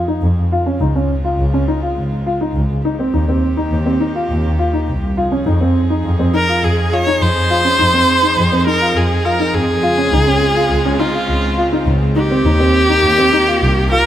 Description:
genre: piano and strings electronica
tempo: 103 BPM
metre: 4/4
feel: straight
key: F minor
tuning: A4 = 440 Hz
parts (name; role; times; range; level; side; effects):
- warm string quartet; sustained chords; 0.0-14.1 s; Db3 to Ab4; -24 LUFS; right 2 dB; none
- dark grand piano; riff; 0.1-14.0 s; C4 to F4; -18 LUFS; equal; low-pass filter, digital delay
- dark studio double bass section; bass; 0.2-13.8 s; C2 to F2; -17 LUFS; equal; none
- clear viola; melody; 6.4-14.1 s; F4 to Db5; -14 LUFS; equal; none
room: light reverb, small room ambience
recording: none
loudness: -12 LUFS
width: side -11 dB against mid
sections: 0.0-14.1 A section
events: fade-in on string quartet 0.0-14.1; filter sweep on grand piano 0.0-14.1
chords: 0.0 Fm7; 0.5 Dbmaj7; 2.8 Eb6; 5.2 Fm7; 9.8 Dbmaj7; 12.2 Eb6

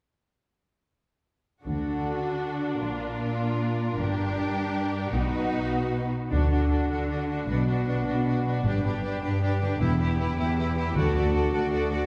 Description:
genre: cinematic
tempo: 103 BPM (dotted quarters)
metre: 6/8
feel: straight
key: D major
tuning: A4 = 440 Hz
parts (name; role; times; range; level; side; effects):
- rich chamber violin section; melody; 1.6-12.1 s; A4 to D5; -41 LUFS; equal; none
- bright symphonic viola section; accompaniment; 1.6-12.1 s; D4 to F#4; -33 LUFS; equal; none
- rich symphonic cello section; bass; 1.6-12.0 s; D2 to D3; -31 LUFS; equal; none
- clear symphonic violin section; second line; 1.7-12.1 s; F4 to A4; -36 LUFS; equal; none
- rich symphonic double bass section; bass; 1.7-11.3 s; E1 to D2; -32 LUFS; equal; none
- concert harp; arpeggios; 6.3-12.1 s; G2 to B4; -36 LUFS; equal; none
- timpani; percussion; 11.0-11.5 s; D3; -35 LUFS; equal; none
room: wet scoring stage reverb, RT60 2.0 s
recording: heard from further back in the room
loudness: -27 LUFS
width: mono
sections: 1.7-6.3 A section; 6.3-12.1 B section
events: build-up 6.3-12.1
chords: 1.7 D; 2.8 Bb; 4.0 Gm; 5.1 B; 6.3 D; 7.5 Bm; 8.6 G; 9.8 Em; 11.0 D

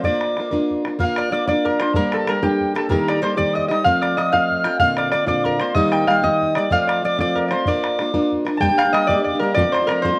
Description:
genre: celtic folk, Celtic jig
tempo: 126 BPM (dotted quarters)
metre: 6/8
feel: straight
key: Bb major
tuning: A4 = 445 Hz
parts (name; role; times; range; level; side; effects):
- concert harp; melody; 0.0-10.2 s; G4 to A5; -22 LUFS; equal; slapback echo
- mandolin; second line; 0.0-10.2 s; G4 to G5; -34 LUFS; equal; none
- mellow tin whistle; second line; 0.0-10.2 s; G5 to G6; -30 LUFS; equal; slapback echo
- fingerpicked plugged-in steel-string acoustic guitar; accompaniment; 0.0-10.2 s; Bb2 to Bb4; -25 LUFS; equal; none
- bodhran; percussion; 0.0-10.1 s; none; -29 LUFS; equal; none
room: little or no reverb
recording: recorded outdoors, with no room sound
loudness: -19 LUFS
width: mono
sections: 1.0-8.6 A section; 8.6-10.2 B section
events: none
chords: 0.0 Bb; 2.0 Gm; 2.9 Eb; 3.9 F; 4.8 Bbadd9; 5.8 Eb; 6.7 F; 7.7 Bb; 8.6 Gm; 9.6 F

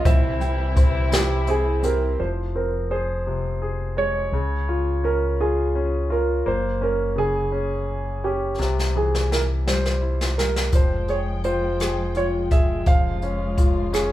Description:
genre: six-eight pop ballad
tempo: 56 BPM (dotted quarters)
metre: 6/8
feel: straight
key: F harmonic minor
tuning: A4 = 440 Hz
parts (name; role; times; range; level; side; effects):
- warm grand piano; melody; 0.0-14.1 s; G4 to F5; -25 LUFS; right 3 dB; none
- muted French horn section; second line; 0.0-2.2 s; C4 to E4; -32 LUFS; left 2 dB; none
- clear baby grand piano; accompaniment; 0.0-14.1 s; C3 to G5; -28 LUFS; left 4 dB; none
- dark studio string section; sustained chords; 0.0-2.2, 10.7-14.1 s; C3 to G5; -32 LUFS; equal; none
- fingerpicked steel-string acoustic guitar; arpeggios; 0.0-2.8 s; G3 to F4; -34 LUFS; right 5 dB; none
- fingered electric bass with an envelope filter; bass; 0.1-14.1 s; F1 to Db2; -25 LUFS; equal; none
- jazz brush drum kit; drums; 0.1-2.0, 8.6-14.1 s; hi-hat, kick drum, rim click, snare drum; -21 LUFS; equal; none
room: moderate large studio reverb, RT60 0.9 s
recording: band playing live in one room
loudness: -20 LUFS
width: side -14 dB against mid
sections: 0.0-2.2 A section; 2.2-14.1 B section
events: drum fill 8.6-10.7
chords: 0.1 C; 2.2 Fm; 4.3 Db; 6.5 Gb; 8.6 C; 10.7 Fmadd9; 12.9 Db/F

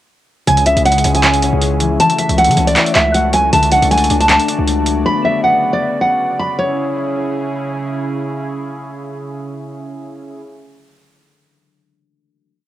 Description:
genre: hip hop, trap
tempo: 157 BPM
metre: 4/4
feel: half-time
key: C# phrygian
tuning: A4 = 442 Hz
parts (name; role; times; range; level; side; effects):
- nylon-string guitar; melody; 0.5-7.7 s; C#5 to B5; -14 LUFS; right 1 dB; low-pass filter, analog delay
- concert harp; accompaniment; 0.5-8.0 s; C#3 to D5; -20 LUFS; left 7 dB; low-pass filter
- warm analog pad; sustained chords; 0.5-10.4 s; C#3 to D5; -24 LUFS; right 2 dB; chorus
- hard-hitting 808-style bass; bass; 0.5-5.0 s; C#2 to C#3; -18 LUFS; right 1 dB; none
- booming analog drum machine; drums; 0.5-5.0 s; handclaps, hi-hat; -17 LUFS; right 1 dB; cassette tape
room: light reverb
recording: home recording on cassette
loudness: -12 LUFS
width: side -13 dB against mid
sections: 0.5-6.6 hook; 6.6-9.6 final chord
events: none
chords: 0.5 C#m; 2.0 F#m7/C#; 3.5 D/C#; 5.1 Bm/C#; 6.6 C#m

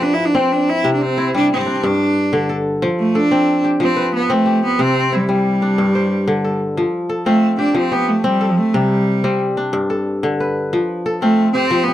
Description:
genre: west african traditional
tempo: 122 BPM (dotted quarters)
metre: 12/8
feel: straight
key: F lydian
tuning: A4 = 440 Hz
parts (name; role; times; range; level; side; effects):
- bright cello; melody; 0.0-11.9 s; F3 to E4; -16 LUFS; right 1 dB; none
- kora; arpeggios; 0.0-11.9 s; G2 to C5; -18 LUFS; left 2 dB; none
room: light reverb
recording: dry, close 1970s-style studio recording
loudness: -14 LUFS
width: side -12 dB against mid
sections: 0.0-6.8 A section; 6.8-11.9 A section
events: none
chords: 0.0 F; 0.8 C; 1.8 G5; 2.8 F; 4.8 C; 5.8 G5; 6.8 F; 8.7 C5; 9.7 G; 10.7 F

